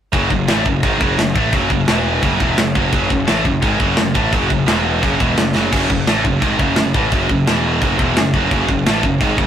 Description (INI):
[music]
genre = heavy metal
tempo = 172 BPM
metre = 4/4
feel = straight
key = F# minor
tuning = A4 = 440 Hz
[part]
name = scooped high-gain guitar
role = riff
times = 0.1-9.5 s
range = E2 to A3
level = -20 LUFS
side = right 7 dB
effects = distortion
[part]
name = tight distorted guitar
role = riff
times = 0.1-9.5 s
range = E2 to A3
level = -20 LUFS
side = left 5 dB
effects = distortion
[part]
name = fuzz picked electric bass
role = bass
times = 0.1-9.5 s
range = E1 to A1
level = -21 LUFS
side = equal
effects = overdrive
[part]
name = tight metal drum kit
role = drums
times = 0.1-9.5 s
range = china cymbal, crash cymbal, kick drum, snare drum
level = -18 LUFS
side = equal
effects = none
[sound]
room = light reverb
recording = rough rehearsal-room recording, faint mains hum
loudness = -14 LUFS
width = side -9 dB against mid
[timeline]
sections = 0.1-9.5 A section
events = drum fill 5.5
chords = 0.1 F#m; 1.9 E5; 2.2 F#m; 4.7 E5; 5.0 F#m; 7.5 E5; 7.8 F#m